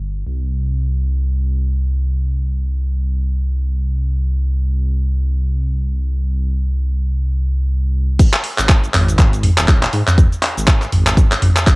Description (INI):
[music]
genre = afro house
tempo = 121 BPM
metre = 4/4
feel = swing 58% on 16ths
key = unclear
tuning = A4 = 440 Hz
[part]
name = dark detuned saw bass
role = bass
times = 0.0-11.5 s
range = Eb1 to Ab2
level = -17 LUFS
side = equal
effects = sidechain pumping
[part]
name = electronic kick drum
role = drums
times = 8.2-11.8 s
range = none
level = -11 LUFS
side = equal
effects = cassette tape
[part]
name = house drum kit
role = drums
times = 8.2-11.8 s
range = cabasa, crash cymbal, handclaps, hi-hat, toms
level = -15 LUFS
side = equal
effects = cassette tape
[sound]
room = little or no reverb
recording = home recording on cassette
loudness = -14 LUFS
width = side -26 dB against mid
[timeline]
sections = 0.0-8.2 A section; 8.2-11.8 B section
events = drop 8.2-11.8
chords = none